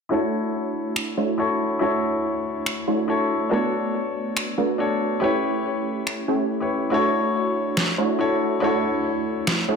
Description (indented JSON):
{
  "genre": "future bass",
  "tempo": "141 BPM",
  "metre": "4/4",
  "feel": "swing 56% on 16ths, half-time",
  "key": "D major",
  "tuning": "A4 = 440 Hz",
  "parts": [
    { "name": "clear grand piano", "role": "accompaniment", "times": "0.1-9.8 s", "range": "D4 to C#5", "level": "-24 LUFS", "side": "left 3 dB", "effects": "low-pass filter, ping-pong delay" },
    { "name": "supersaw stab", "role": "riff", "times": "0.1-9.8 s", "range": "A3 to C#5", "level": "-24 LUFS", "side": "right 2 dB", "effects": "low-pass filter, ping-pong delay" },
    { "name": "electronic finger snaps and snare drum", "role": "drums", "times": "1.0-9.6 s", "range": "none", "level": "-24 LUFS", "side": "right 1 dB", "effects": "none" }
  ],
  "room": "moderate digital room reverb, RT60 0.9 s, small room ambience",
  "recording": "none",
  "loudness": "-21 LUFS",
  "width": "side -5 dB against mid",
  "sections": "0.1-9.8 A section",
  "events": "filter sweep on grand piano 0.1-9.8",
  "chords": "0.1 Dmaj9; 3.5 Bm7; 5.2 A7; 6.9 Dmaj9"
}